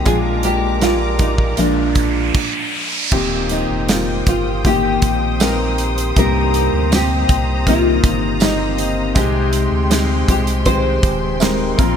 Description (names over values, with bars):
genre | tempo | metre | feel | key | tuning
pop ballad | 79 BPM | 4/4 | straight | Eb major | A4 = 440 Hz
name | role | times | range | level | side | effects
nylon-string guitar | melody | 0.0-12.0 s | D4 to C5 | -21 LUFS | equal | wide subtle chorus
warm concert grand piano | accompaniment | 0.0-12.0 s | G2 to D5 | -21 LUFS | left 1 dB | wide subtle chorus
rich studio string section | sustained chords | 0.0-12.0 s | Ab3 to Eb6 | -27 LUFS | left 1 dB | none
fingerpicked steel-string acoustic guitar | arpeggios | 0.0-12.0 s | Bb2 to G4 | -24 LUFS | left 7 dB | none
sub bass with octave | bass | 0.0-12.0 s | Eb1 to D2 | -21 LUFS | right 1 dB | none
modern studio drum kit | drums | 0.1-12.0 s | crash cymbal, hi-hat, kick drum, snare drum | -19 LUFS | right 1 dB | none
riser | sound effects | 1.5-3.1 s | none | -25 LUFS | right 2 dB | none
tambourine | percussion | 3.9-11.6 s | none | -34 LUFS | right 7 dB | none
room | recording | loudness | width
moderate lush hall reverb, RT60 2.9 s | bright 1980s-style digital production | -14 LUFS | side -8 dB against mid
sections
0.0-3.1 A section; 3.1-12.0 B section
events
riser 1.5-3.1; stop 2.4-3.1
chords
0.1 Bb7; 3.1 Eb6; 6.2 Cm7; 9.2 Abmaj7/C